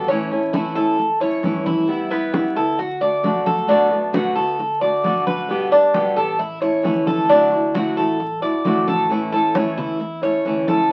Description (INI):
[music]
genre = latin, Cuban son and guajira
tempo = 133 BPM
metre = 4/4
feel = straight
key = unclear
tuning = A4 = 437 Hz
[part]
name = flamenco guitar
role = accompaniment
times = 0.0-10.9 s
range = B2 to G4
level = -24 LUFS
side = equal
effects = none
[part]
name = Cuban tres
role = arpeggios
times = 0.0-10.9 s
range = B3 to D5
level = -22 LUFS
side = equal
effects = none
[part]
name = upright bass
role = bass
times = 0.0-10.9 s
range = G1 to G2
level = -40 LUFS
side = equal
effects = none
[part]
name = congas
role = percussion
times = 0.1-10.9 s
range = none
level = -28 LUFS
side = equal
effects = none
[sound]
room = wet studio reverb, RT60 0.6 s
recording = very old 78 rpm record, vinyl crackle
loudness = -19 LUFS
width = mono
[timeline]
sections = 0.0-9.1 A section; 9.1-10.9 B section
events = none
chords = 0.1 A; 1.9 G6; 2.8 Bm7; 4.6 D; 5.5 G; 6.4 A; 7.3 Dadd9; 9.1 A